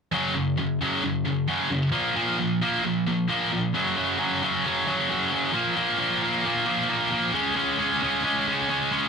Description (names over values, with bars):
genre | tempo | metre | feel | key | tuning
rock | 133 BPM | 4/4 | straight | F# major | A4 = 440 Hz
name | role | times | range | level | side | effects
scooped high-gain guitar | solo | 0.1-9.1 s | F#2 to C#4 | -22 LUFS | equal | distortion
room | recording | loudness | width
moderate studio reverb, RT60 0.6 s | rough rehearsal-room recording | -22 LUFS | side -6 dB against mid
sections
0.1-3.7 A section; 3.7-9.1 B section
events
none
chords
0.1 F#5; 1.9 A#5; 3.7 F#5; 5.5 A#5; 7.3 C#5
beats
| 0.12 0.57 1.02 1.48 | 1.93 2.38 2.84 3.29 | 3.74 4.19 4.64 5.09 | 5.54 5.99 6.44 6.89 | 7.34 7.79 8.25 8.70